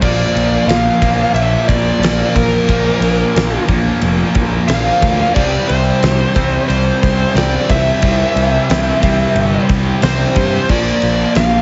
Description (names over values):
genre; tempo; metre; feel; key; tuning
hard rock; 90 BPM; 4/4; straight; unclear; A4 = 440 Hz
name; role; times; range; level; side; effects
smooth overdriven lead guitar; melody; 0.0-11.6 s; Bb4 to F5; -20 LUFS; equal; slapback echo
distorted electric guitar; riff; 0.0-11.6 s; Bb2 to C4; -23 LUFS; equal; distortion
overdriven semi-hollow guitar; riff; 0.0-11.6 s; Bb2 to C4; -24 LUFS; equal; phaser
scooped high-gain guitar; riff; 0.0-11.6 s; Bb2 to C4; -26 LUFS; equal; distortion
fuzz picked electric bass; bass; 0.0-11.6 s; F1 to G2; -19 LUFS; equal; overdrive
huge arena drum kit; drums; 0.0-11.5 s; crash cymbal, kick drum, ride cymbal, snare drum; -21 LUFS; equal; none
room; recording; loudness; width
light reverb, studio reverb; heavily compressed radio sound, multiband compression, nothing above 7.8 kHz; -14 LUFS; mono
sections
0.0-11.6 A section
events
none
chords
0.0 Bb; 5.4 C; 10.7 Bb